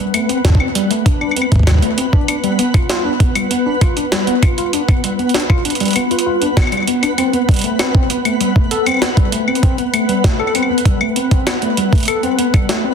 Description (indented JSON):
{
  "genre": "IDM",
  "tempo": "98 BPM",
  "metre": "4/4",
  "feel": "straight",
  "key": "A minor",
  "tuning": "A4 = 441 Hz",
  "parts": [
    { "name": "mellow tine electric piano", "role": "arpeggios", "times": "0.0-12.9 s", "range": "G3 to A4", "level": "-18 LUFS", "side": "left 2 dB", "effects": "overdrive, fast stereo tremolo, vintage 12-bit sampler grit, low-pass filter, digital delay" },
    { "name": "twinkling granular texture", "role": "texture", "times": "0.0-12.9 s", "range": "B3 to B4", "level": "-22 LUFS", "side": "right 1 dB", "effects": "built-in reverb, sidechain pumping" },
    { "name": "jungle sampler-style drum kit", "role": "drums", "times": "0.1-12.8 s", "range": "claves, hi-hat, snare drum", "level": "-20 LUFS", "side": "equal", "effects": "ping-pong delay" },
    { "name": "electronic kick drum", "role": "drums", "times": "0.4-12.7 s", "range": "none", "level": "-13 LUFS", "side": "equal", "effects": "none" }
  ],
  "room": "light reverb",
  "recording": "dense, heavily limited modern master",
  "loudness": "-13 LUFS",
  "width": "side -7 dB against mid",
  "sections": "0.0-12.9 A section",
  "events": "filter sweep on tine electric piano 0.0-12.9",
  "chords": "0.0 D7sus4; 2.3 G7; 7.2 Am9"
}